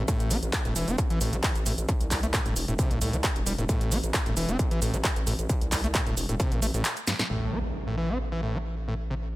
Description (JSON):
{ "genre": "driving peak-time techno", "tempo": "133 BPM", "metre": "4/4", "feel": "straight", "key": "A minor", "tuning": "A4 = 445 Hz", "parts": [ { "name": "screaming distorted acid line", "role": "riff", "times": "0.0-9.1 s", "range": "G2 to C4", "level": "-31 LUFS", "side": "equal", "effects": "distortion, chorus, sidechain pumping, digital delay" }, { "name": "gritty driven synth bass", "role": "bass", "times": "0.0-9.4 s", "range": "E1 to C2", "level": "-30 LUFS", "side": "equal", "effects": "sidechain pumping" }, { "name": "electronic kick drum", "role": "drums", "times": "0.1-6.5 s", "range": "none", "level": "-27 LUFS", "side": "equal", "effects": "distortion, overdrive" }, { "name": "punchy analog drum machine", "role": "drums", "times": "0.1-9.4 s", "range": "handclaps, hi-hat, shaker, snare drum", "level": "-30 LUFS", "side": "equal", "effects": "low-pass filter on snare, sidechain pumping on hats, low-pass filter on hats, sidechain pumping on perc, low-pass filter on perc, low-pass filter on room" }, { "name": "impact", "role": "sound effects", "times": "7.3-9.1 s", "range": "none", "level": "-37 LUFS", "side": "equal", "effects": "none" } ], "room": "little or no reverb", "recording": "none", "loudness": "-25 LUFS", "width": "side -17 dB against mid", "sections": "0.0-7.3 A section; 7.3-9.4 B section", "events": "drum fill 7.1; impact 7.3-9.1", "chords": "0.0 Am; 7.3 N.C." }